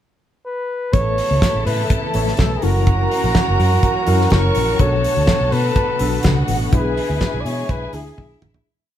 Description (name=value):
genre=disco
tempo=124 BPM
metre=4/4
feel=straight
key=A major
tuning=A4 = 440 Hz
part: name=warm flugelhorn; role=melody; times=0.5-8.4 s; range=F#4 to D5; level=-22 LUFS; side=right 1 dB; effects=none
part: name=warm studio violin section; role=second line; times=0.9-8.6 s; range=E4 to C#6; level=-25 LUFS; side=left 1 dB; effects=none
part: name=tine electric piano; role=accompaniment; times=0.9-8.7 s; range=B2 to C#5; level=-25 LUFS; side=left 3 dB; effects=overdrive, fast stereo tremolo
part: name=warm studio string section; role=sustained chords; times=0.9-8.6 s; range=C#3 to F#4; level=-28 LUFS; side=left 1 dB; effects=none
part: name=vintage muted fingered electric bass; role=bass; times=0.9-8.6 s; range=F#1 to B2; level=-20 LUFS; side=equal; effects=none
part: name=damped 70s drum kit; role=drums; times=0.9-8.6 s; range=hi-hat, kick drum, snare drum, toms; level=-20 LUFS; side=equal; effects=none
room=moderate stone room reverb, RT60 0.9 s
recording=band playing live in one room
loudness=-15 LUFS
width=side -11 dB against mid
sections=0.0-0.9 pickup bar; 0.9-8.7 verse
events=fade-out 6.7-8.7; drum fill 8.2-8.7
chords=0.0 N.C.; 0.9 Aadd9; 2.6 F#7; 4.8 Bm7; 6.7 E7/B